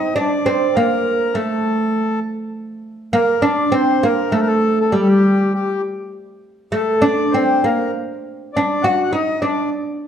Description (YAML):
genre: arabic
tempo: 100 BPM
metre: 3/4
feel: straight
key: D maqam hijaz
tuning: A4 = 440 Hz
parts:
  - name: oud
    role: melody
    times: 0.0-9.7 s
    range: G3 to F#4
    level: -16 LUFS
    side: right 1 dB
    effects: none
  - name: accordion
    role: second line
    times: 0.0-9.7 s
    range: G4 to F#5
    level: -22 LUFS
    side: left 4 dB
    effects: none
room: wet recital hall reverb, RT60 1.4 s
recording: none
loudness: -15 LUFS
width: side -8 dB against mid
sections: 0.0-10.1 A section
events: none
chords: none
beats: 0.14 | 0.74 1.33 1.93 | 2.53 3.13 3.73 | 4.33 4.93 5.53 | 6.13 6.73 7.33 | 7.93 8.53 9.13